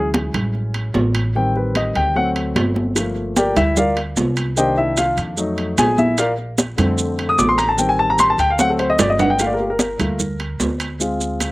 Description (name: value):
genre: Afro-Cuban jazz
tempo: 149 BPM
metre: 4/4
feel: straight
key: unclear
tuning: A4 = 440 Hz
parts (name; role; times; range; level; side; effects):
- warm upright piano; accompaniment; 0.0-11.5 s; D3 to Eb6; -18 LUFS; left 1 dB; slapback echo
- upright bass; bass; 0.0-11.5 s; G1 to F2; -24 LUFS; equal; none
- congas; percussion; 0.1-11.5 s; none; -22 LUFS; right 1 dB; none
- timbales; percussion; 0.1-11.5 s; none; -25 LUFS; right 3 dB; none
- maracas; percussion; 3.0-11.5 s; none; -25 LUFS; right 3 dB; none
room: little or no reverb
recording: recorded outdoors, with no room sound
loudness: -16 LUFS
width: side -19 dB against mid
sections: 0.0-9.4 A section; 9.4-11.5 A section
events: upright piano solo 0.0-11.5; drum fill 8.6-9.4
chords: 0.0 Dmaj9#11; 1.4 Am7b5; 2.2 D7; 3.0 Gm7; 4.6 Cm7; 5.4 F7b9; 6.2 Bbmaj7; 7.8 Am7b5; 8.6 D7; 9.4 Gm9; 11.0 Dm7b5